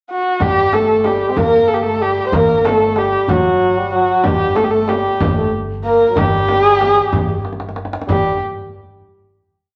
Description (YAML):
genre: Persian modal ensemble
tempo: 62 BPM (dotted quarters)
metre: 6/8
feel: straight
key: unclear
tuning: A4 = 438 Hz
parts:
  - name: dark kamancheh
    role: melody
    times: 0.1-8.4 s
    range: F#4 to C5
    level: -17 LUFS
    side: equal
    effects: none
  - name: French horn with straight mute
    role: second line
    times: 0.4-8.4 s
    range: F#3 to C4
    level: -22 LUFS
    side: equal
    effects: none
  - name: upright bass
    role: bass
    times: 0.4-8.4 s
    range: G1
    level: -27 LUFS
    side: equal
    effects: none
  - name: frame drum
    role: percussion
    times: 0.4-8.4 s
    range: none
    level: -25 LUFS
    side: equal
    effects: none
  - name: tombak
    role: percussion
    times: 0.4-8.4 s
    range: none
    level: -28 LUFS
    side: equal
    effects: none
room: wet large studio reverb, RT60 1.2 s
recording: none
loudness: -15 LUFS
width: mono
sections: 0.0-0.4 pickup bar; 0.4-8.1 A section; 8.1-9.8 final note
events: drum fill 7.5-8.1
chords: none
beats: | 0.40 1.36 | 2.32 3.29 | 4.25 5.21 | 6.17 7.13 | 8.10